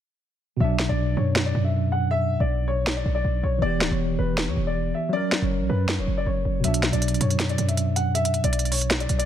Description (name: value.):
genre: hip hop, trap.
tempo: 159 BPM.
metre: 4/4.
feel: half-time.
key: B harmonic minor.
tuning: A4 = 439 Hz.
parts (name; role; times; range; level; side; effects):
dark grand piano; melody; 0.6-9.3 s; B4 to F#5; -28 LUFS; left 3 dB; none.
tine electric piano; accompaniment; 0.6-9.3 s; B2 to A#4; -26 LUFS; equal; medium stereo tremolo.
hard-hitting 808-style bass; bass; 0.6-9.3 s; D1 to F#2; -25 LUFS; equal; none.
trap drum kit; drums; 0.8-9.3 s; hi-hat, snare drum; -26 LUFS; right 1 dB; none.
room: digital ambience.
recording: dense, heavily limited modern master.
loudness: -21 LUFS.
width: side -10 dB against mid.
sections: 0.6-9.3 A section.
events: hi-hats muted 0.6-6.6.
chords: 0.6 Bm; 3.6 Em; 5.1 F#; 6.6 Bm.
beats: | 0.60 0.98 1.36 1.74 | 2.11 2.49 2.87 3.25 | 3.62 4.00 4.38 4.75 | 5.13 5.51 5.89 6.26 | 6.64 7.02 7.40 7.77 | 8.15 8.53 8.90.